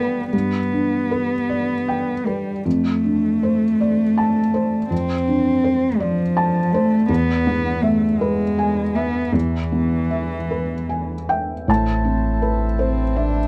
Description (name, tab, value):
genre	neoclassical piano and strings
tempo	50-56 BPM (dotted quarters)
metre	6/8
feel	rubato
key	A minor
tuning	A4 = 439 Hz
part	muted cello	second line	0.0-13.5 s	E3 to D4	-22 LUFS	equal	none
part	felt-muted upright piano	accompaniment	0.0-13.5 s	E2 to A5	-24 LUFS	equal	none
part	pedal harmonium	sustained chords	11.7-13.5 s	C4 to A4	-32 LUFS	equal	none
part	punchy sub bass	bass	11.7-13.5 s	A1	-24 LUFS	equal	none
room	light reverb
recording	dry, close 1970s-style studio recording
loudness	-20 LUFS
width	mono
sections	0.0-11.7 A section; 11.7-13.5 A section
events	none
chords	0.0 G; 2.7 Dm7/F; 7.1 E; 11.7 Amadd9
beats	| 0.33 1.50 | 2.65 3.79 | 4.91 6.00 | 7.09 8.19 | 9.34 10.51 | 11.69 12.79